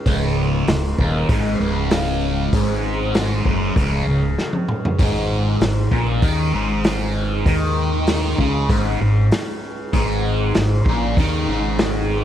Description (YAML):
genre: psychedelic rock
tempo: 97 BPM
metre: 4/4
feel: straight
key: unclear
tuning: A4 = 441 Hz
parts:
  - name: tanpura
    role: drone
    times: 0.0-12.2 s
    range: Db2 to Db3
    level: -29 LUFS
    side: equal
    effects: none
  - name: thick fuzz guitar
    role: riff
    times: 0.1-12.2 s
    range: Db2 to Eb3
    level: -20 LUFS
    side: equal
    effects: distortion, phaser
  - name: fingered electric bass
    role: bass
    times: 0.1-12.2 s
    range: Db1 to Eb2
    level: -23 LUFS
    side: equal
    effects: none
  - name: vintage drum kit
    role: drums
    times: 0.1-11.9 s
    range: hi-hat, kick drum, snare drum, toms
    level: -21 LUFS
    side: equal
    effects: none
room: light reverb, small room ambience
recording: faint mains hum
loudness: -17 LUFS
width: side -10 dB against mid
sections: 0.0-12.2 A section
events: drum fill 4.4-5.0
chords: 0.0 Db5; 5.0 Ab5